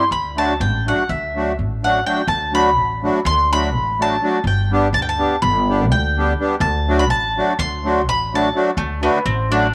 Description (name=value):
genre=balkan folk, Balkan wedding band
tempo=250 BPM (eighths)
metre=9/8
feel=straight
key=D mixolydian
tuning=A4 = 438 Hz
part: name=bowl-back mandolin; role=melody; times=0.0-9.7 s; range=A3 to C6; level=-22 LUFS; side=equal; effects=none
part: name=accordion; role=accompaniment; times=0.0-9.7 s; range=D3 to G4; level=-23 LUFS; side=equal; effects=light tremolo tuning
part: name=upright bass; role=bass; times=0.1-9.7 s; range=G1 to D2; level=-24 LUFS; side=equal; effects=none
room=wet spring reverb, RT60 1.6 s, small room ambience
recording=none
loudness=-18 LUFS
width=mono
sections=0.0-8.8 A section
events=mandolin solo 0.0-8.8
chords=0.1 D; 4.4 G; 6.6 D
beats=| 0.10 0.35 0.59 0.83 1.07 1.31 1.55 1.79 2.04 | 2.28 2.52 2.76 3.00 3.24 3.48 3.72 3.96 4.21 | 4.45 4.69 4.93 5.17 5.41 5.65 5.89 6.13 6.37 | 6.61 6.85 7.09 7.33 7.57 7.81 8.04 8.28 8.52 | 8.76 9.00 9.24 9.48 9.72